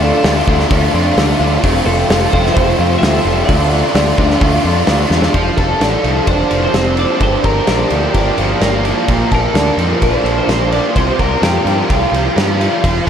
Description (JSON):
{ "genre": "rock, shoegaze and dream pop", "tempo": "128 BPM", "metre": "4/4", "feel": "straight", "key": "unclear", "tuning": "A4 = 439 Hz", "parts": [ { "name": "twelve-string electric guitar", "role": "melody", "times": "0.0-12.6 s", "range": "G4 to E5", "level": "-22 LUFS", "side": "right 1 dB", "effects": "analog chorus, diffuse ambient delay" }, { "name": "biting overdriven guitar", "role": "riff", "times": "0.0-13.1 s", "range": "F2 to Bb4", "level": "-15 LUFS", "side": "equal", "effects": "analog chorus" }, { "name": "growling picked electric bass", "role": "bass", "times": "0.0-13.1 s", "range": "F1 to G2", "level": "-17 LUFS", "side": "equal", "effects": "overdrive" }, { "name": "loose indie drum kit", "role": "drums", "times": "0.2-13.1 s", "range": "hi-hat, kick drum, ride cymbal, snare drum", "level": "-17 LUFS", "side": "equal", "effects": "none" } ], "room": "wet huge ambient reverb, RT60 8.3 s", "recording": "dreamy mix soaked in reverb", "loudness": "-11 LUFS", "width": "side -8 dB against mid", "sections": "0.0-5.3 A section; 5.3-13.1 B section", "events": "drum fill 5.1", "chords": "0.0 Dm; 1.6 Fmaj7; 3.5 Dm; 5.3 F6; 7.2 Gm7; 9.1 Bbmaj7; 11.0 C7sus4", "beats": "0.24 0.71 1.17 | 1.63 2.10 2.56 3.02 | 3.48 3.95 4.41 4.88 | 5.34 5.81 6.28 6.74 | 7.21 7.68 8.15 8.62 | 9.08 9.55 10.02 10.49 | 10.96 11.43 11.90 12.37 | 12.84" }